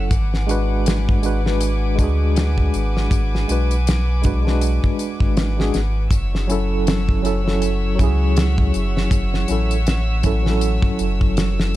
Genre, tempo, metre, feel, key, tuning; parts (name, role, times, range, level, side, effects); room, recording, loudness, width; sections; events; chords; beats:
trip hop; 80 BPM; 4/4; swing 58% on 16ths; F# minor; A4 = 440 Hz
tine electric piano; accompaniment; 0.0-11.8 s; F#3 to B4; -23 LUFS; equal; slow stereo tremolo, tape echo
rich studio violin section; sustained chords; 0.0-11.8 s; B4 to E6; -30 LUFS; left 1 dB
warm sub bass; bass; 0.0-11.8 s; F#1 to D2; -20 LUFS; equal
damped 70s drum kit; drums; 0.1-11.7 s; hi-hat, kick drum, snare drum; -20 LUFS; equal; studio reverb
small room ambience; dark, warm production; -16 LUFS; side -15 dB against mid
0.0-6.1 A section; 6.1-11.8 B section
0.1 G#m7b5; 6.1 F#m7
| 0.12 0.87 1.62 2.37 | 3.12 3.87 4.62 5.37 | 6.12 6.87 7.62 8.37 | 9.12 9.87 10.62 11.37